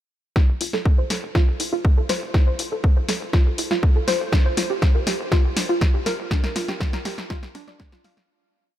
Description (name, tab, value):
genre	progressive house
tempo	121 BPM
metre	4/4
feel	straight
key	F major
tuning	A4 = 440 Hz
part	soft round pluck	arpeggios	0.4-8.1 s	D4 to F5	-26 LUFS	equal	wide subtle chorus, sidechain pumping, tape echo
part	deep house drum kit	drums	0.4-8.3 s	hi-hat, snare drum	-27 LUFS	left 1 dB	overdrive
part	electronic kick drum	drums	0.4-7.9 s	none	-18 LUFS	equal	overdrive
part	tight sequencer bass	bass	0.5-8.3 s	F1 to G1	-41 LUFS	equal	none
room	light reverb, digital ambience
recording	none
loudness	-19 LUFS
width	side -12 dB against mid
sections	0.4-8.3 build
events	build-up 0.4-8.3; drum fill 0.4-8.3; fade-out 5.6-8.3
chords	0.4 F; 4.3 Gm7